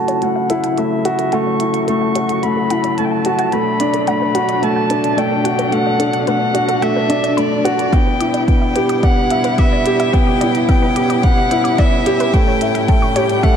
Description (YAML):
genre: piano and strings electronica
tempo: 109 BPM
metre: 4/4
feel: straight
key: B minor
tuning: A4 = 439 Hz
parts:
  - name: rich violin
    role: melody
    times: 0.0-13.6 s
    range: D5 to C#6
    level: -20 LUFS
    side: left 1 dB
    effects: low-pass filter
  - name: clear string quartet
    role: sustained chords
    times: 0.0-13.6 s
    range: A2 to F#4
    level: -23 LUFS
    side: equal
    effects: sidechain pumping, low-pass filter
  - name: dark upright piano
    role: riff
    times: 0.0-13.6 s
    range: A3 to E5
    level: -17 LUFS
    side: equal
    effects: none
  - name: wide unison pluck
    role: arpeggios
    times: 0.1-13.5 s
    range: A4 to D6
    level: -26 LUFS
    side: equal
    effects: sidechain pumping, digital delay
  - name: electronic hi-hat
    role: drums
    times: 0.1-13.5 s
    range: none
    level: -31 LUFS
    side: right 2 dB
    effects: high-pass filter on hats
  - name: electronic kick drum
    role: drums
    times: 7.9-13.5 s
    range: none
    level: -14 LUFS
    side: equal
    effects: overdrive
room: moderate concert hall reverb, RT60 2.1 s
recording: none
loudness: -13 LUFS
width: side -8 dB against mid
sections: 0.0-13.6 A section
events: build-up 0.0-13.6; filter sweep on string quartet 0.0-13.6; filter sweep on synth arpeggio sound 0.0-13.6; filter sweep on violin 0.0-13.6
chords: 0.0 F#m7; 3.5 Bm7; 7.9 Em7; 12.3 A7